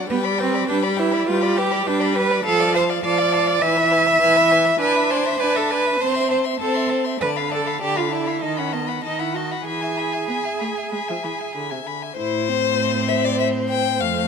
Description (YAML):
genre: quick classical-period movement for string quartet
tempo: 100 BPM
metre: 4/4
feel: rubato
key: A minor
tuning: A4 = 439 Hz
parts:
  - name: warm violin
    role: melody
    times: 0.0-14.3 s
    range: C5 to C6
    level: -26 LUFS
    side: left 12 dB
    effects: none
  - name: rich violin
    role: second line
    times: 0.0-14.3 s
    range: B4 to G#5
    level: -27 LUFS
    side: left 5 dB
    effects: none
  - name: rich viola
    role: accompaniment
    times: 0.0-14.3 s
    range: C3 to E4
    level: -25 LUFS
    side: right 2 dB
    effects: none
  - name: rich cello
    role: bass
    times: 0.1-14.3 s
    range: F2 to E5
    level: -21 LUFS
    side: right 3 dB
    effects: none
room: moderate scoring stage reverb, RT60 1.9 s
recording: none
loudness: -18 LUFS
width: side -6 dB against mid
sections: 0.0-12.2 A section; 12.2-14.3 B section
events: none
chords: 0.1 G; 2.5 Dm/F; 3.6 E; 4.8 E7/D; 6.0 Am/C; 7.2 Bm7b5/D; 8.4 B7/D#; 9.7 E; 12.2 Am